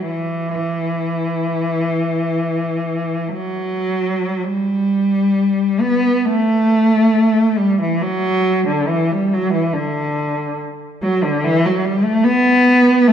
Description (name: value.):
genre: classical, free, expressive piece for unaccompanied cello.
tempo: 46-76 BPM.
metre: 4/4.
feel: rubato.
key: E minor.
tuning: A4 = 443 Hz.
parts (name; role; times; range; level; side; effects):
warm cello; solo; 0.0-13.1 s; D3 to B3; -15 LUFS; equal; none.
room: moderate scoring stage reverb, RT60 1.9 s.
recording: none.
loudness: -15 LUFS.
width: side -9 dB against mid.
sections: 0.0-4.4 A section; 4.4-13.1 A section.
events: none.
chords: none.